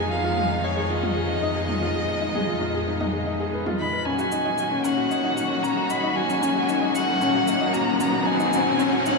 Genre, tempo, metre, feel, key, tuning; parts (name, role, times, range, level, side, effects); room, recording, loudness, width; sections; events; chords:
piano and strings electronica; 114 BPM; 4/4; straight; Eb minor; A4 = 440 Hz
rich violin; melody; 0.0-9.2 s; Db5 to Cb6; -26 LUFS; equal; low-pass filter, diffuse ambient delay
clear symphonic string section; sustained chords; 0.0-9.2 s; Eb3 to Gb5; -28 LUFS; left 1 dB
warm upright piano; riff; 0.0-9.2 s; Db4 to Cb5; -26 LUFS; left 2 dB; diffuse ambient delay
dark studio double bass section; bass; 0.0-4.0 s; F2; -30 LUFS; left 2 dB
electronic toms and shaker; drums; 0.4-9.2 s; -36 LUFS; equal; overdrive
riser; sound effects; 5.5-9.2 s; -28 LUFS; left 2 dB
wet huge ambient reverb, RT60 7.6 s; dreamy mix soaked in reverb; -21 LUFS; side -2 dB against mid
0.0-4.1 A section; 4.1-9.2 B section
build-up 4.1-9.2; riser 5.5-9.2
0.0 Fm7b5; 4.1 Ebm7